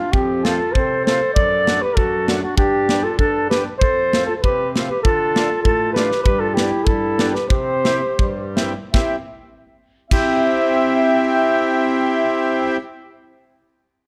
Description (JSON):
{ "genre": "alpine folk, alpine dance band", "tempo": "77-100 BPM", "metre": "2/4", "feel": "straight", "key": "C major", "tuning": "A4 = 441 Hz", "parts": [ { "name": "mellow flugelhorn", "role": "melody", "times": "0.0-12.8 s", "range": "F4 to E5", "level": "-22 LUFS", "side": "equal", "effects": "slapback echo" }, { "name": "mellow clarinet", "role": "second line", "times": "0.0-12.8 s", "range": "C4 to A4", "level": "-27 LUFS", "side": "equal", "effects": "none" }, { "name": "accordion", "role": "accompaniment", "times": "0.1-12.8 s", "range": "F2 to G4", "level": "-24 LUFS", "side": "equal", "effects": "none" }, { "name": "tight metal drum kit", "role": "drums", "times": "0.1-10.3 s", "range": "crash cymbal, kick drum, snare drum", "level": "-22 LUFS", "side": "equal", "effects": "none" } ], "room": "light reverb", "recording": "dark, warm production", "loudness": "-18 LUFS", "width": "mono", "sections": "0.0-8.9 A section; 8.9-12.0 B section", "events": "slowing down 6.3-8.9", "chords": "0.1 F; 1.4 D/F#; 2.6 G; 3.8 F; 5.0 Dm; 6.3 G; 7.5 C" }